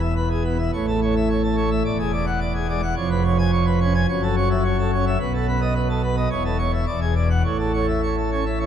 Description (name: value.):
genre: classical, organ toccata.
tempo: 107 BPM.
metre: 4/4.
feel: straight.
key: A major.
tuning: A4 = 440 Hz.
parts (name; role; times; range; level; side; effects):
pipe organ, plenum; solo; 0.0-8.7 s; E1 to G#5; -19 LUFS; equal; none.
room: wet church reverb, RT60 3.5 s.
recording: dark, warm production.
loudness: -19 LUFS.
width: side -9 dB against mid.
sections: 0.0-8.7 A section.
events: none.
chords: 0.0 E; 0.7 A; 1.9 E9; 3.0 C#7/E#; 4.1 F#m7; 5.2 B7; 6.3 A/E; 6.9 E9; 7.4 A.